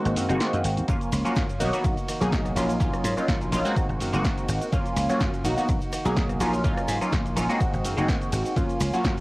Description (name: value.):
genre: filtered disco house.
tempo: 125 BPM.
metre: 4/4.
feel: swing 54% on 16ths.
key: unclear.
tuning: A4 = 441 Hz.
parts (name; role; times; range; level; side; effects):
funky polysynth comp; accompaniment; 0.0-9.1 s; F#3 to G#4; -26 LUFS; equal; chorus, phaser, cassette tape, sidechain pumping.
direct-recorded clean electric guitar; riff; 0.0-9.2 s; D#3 to F#4; -32 LUFS; right 1 dB; sidechain pumping, cassette tape.
dry thumbed slap bass; bass; 0.1-9.2 s; F#1 to G#2; -28 LUFS; equal; sidechain pumping.
punchy analog drum machine; drums; 0.1-9.2 s; cabasa, hi-hat, ride cymbal, rim click, snare drum; -34 LUFS; equal; sidechain pumping on hats, cassette tape, sidechain pumping on perc, sidechain pumping on cymbals.
electronic kick drum; drums; 0.9-9.1 s; none; -27 LUFS; equal; cassette tape.
maracas; percussion; 0.9-9.2 s; none; -48 LUFS; left 1 dB; none.
room: light reverb.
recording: home recording on cassette.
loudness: -22 LUFS.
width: side -21 dB against mid.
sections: 0.0-9.2 A section.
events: break 0.0-0.9.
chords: 0.0 G#9; 0.9 F#maj7; 1.6 Bmaj7; 2.6 D#m9/A#; 3.8 G#9; 4.7 F#maj7; 5.4 Bmaj7; 6.4 D#m9/A#; 7.6 G#9; 8.6 F#maj7.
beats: 0.40 | 0.88 1.36 1.84 2.32 | 2.80 3.28 3.76 4.24 | 4.72 5.20 5.68 6.16 | 6.64 7.12 7.60 8.08 | 8.56 9.04.